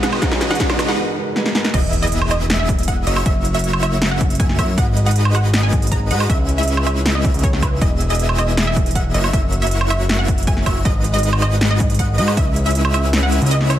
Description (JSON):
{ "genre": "future bass", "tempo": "158 BPM", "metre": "4/4", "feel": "half-time", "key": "unclear", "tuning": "A4 = 435 Hz", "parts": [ { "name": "wide unison pluck", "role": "melody", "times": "0.0-13.8 s", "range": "B4 to A#5", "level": "-25 LUFS", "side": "right 2 dB", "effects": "sidechain pumping, digital delay" }, { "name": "felt-muted upright piano", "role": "accompaniment", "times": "0.0-1.8 s", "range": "G#3 to A#5", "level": "-27 LUFS", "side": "right 2 dB", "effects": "sidechain pumping, digital delay" }, { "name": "airy breathy pad", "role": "sustained chords", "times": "0.0-1.0 s", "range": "B2 to F#4", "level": "-34 LUFS", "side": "equal", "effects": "chorus, sidechain pumping" }, { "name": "supersaw chords", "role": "riff", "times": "0.0-13.8 s", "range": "G#3 to E5", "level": "-24 LUFS", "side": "equal", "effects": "sidechain pumping" }, { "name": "fat analog bass", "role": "bass", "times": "0.0-13.8 s", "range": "E1 to G#2", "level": "-19 LUFS", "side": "equal", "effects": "sidechain pumping, high-pass filter" }, { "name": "big-room dance drum kit", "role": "drums", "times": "0.0-13.8 s", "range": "crash cymbal, hi-hat, snare drum, woodblock", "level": "-22 LUFS", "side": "right 1 dB", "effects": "overdrive" }, { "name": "riser and impact", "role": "sound effects", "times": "0.0-3.3 s", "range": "none", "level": "-27 LUFS", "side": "equal", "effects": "none" }, { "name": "electronic kick drum", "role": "drums", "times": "0.2-12.4 s", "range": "none", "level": "-19 LUFS", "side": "equal", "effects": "overdrive" }, { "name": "airy dreamy lead", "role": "arpeggios", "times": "1.7-13.8 s", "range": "D#5 to E5", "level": "-30 LUFS", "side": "equal", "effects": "chorus, sidechain pumping, digital delay" } ], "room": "digital ambience", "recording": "none", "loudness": "-15 LUFS", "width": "side -12 dB against mid", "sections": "0.0-1.7 A section; 1.7-13.8 B section", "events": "build-up 0.0-1.7; drum fill 0.0-1.0, 1.4-1.7; riser 0.0-1.0; filter sweep on analog synth pad 0.0-1.7; break 1.0-1.7; drop 1.7-13.8; impact 1.7-3.3; kick drops out 13.1-13.8", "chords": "0.2 C#m7; 1.7 Emaj7; 3.1 F#7; 4.8 G#m7; 6.3 C#m7; 7.8 Emaj7; 9.1 F#7; 10.9 G#m7; 12.4 C#m7" }